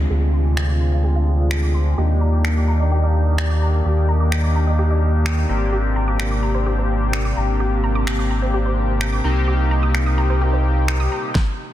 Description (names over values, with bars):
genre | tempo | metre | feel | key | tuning
dance-pop | 128 BPM | 4/4 | straight | unclear | A4 = 437 Hz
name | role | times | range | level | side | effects
chorused polysynth | accompaniment | 0.0-11.3 s | Bb3 to Ab4 | -25 LUFS | left 2 dB | sidechain pumping, low-pass filter
airy breathy pad | sustained chords | 0.0-11.3 s | C3 to D5 | -28 LUFS | left 1 dB | chorus, sidechain pumping, low-pass filter
sub bass with octave | bass | 0.0-11.1 s | Ab1 to Eb2 | -18 LUFS | equal | sidechain pumping
downlifter | sound effects | 0.0-2.0 s | none | -42 LUFS | equal | none
resonant blip pluck | arpeggios | 0.1-11.2 s | G4 to Ab6 | -30 LUFS | right 2 dB | chorus, sidechain pumping, low-pass filter, dub echo
pop drum kit | drums | 0.6-11.5 s | finger snaps, kick drum, snare drum | -27 LUFS | equal | overdrive, soft clipping on snare
room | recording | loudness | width
light reverb, digital ambience | dense, heavily limited modern master | -16 LUFS | side -13 dB against mid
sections
0.0-11.7 A section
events
filter sweep 0.0-11.7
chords
0.0 Dm7b5; 2.0 Ebmaj7; 5.5 Abmaj9#11; 9.2 Cm7